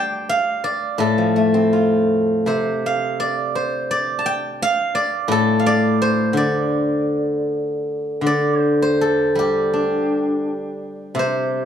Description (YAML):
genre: chinese traditional, Chinese solo plucked strings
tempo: 77-88 BPM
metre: 2/4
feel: rubato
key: D yu mode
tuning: A4 = 440 Hz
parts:
  - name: steel-string zither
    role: solo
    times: 0.0-11.7 s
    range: A2 to D6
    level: -17 LUFS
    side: equal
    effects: none
room: moderate recital hall reverb, RT60 1.8 s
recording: dark, warm production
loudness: -17 LUFS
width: side -8 dB against mid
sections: 0.0-8.2 A section; 8.2-11.7 B section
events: none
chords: none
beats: 0.29 | 1.00 1.74 | 2.48 3.21 | 3.92 4.61 | 5.30 6.01 | 6.72 7.47 | 8.24 8.99 | 9.74 10.46 | 11.17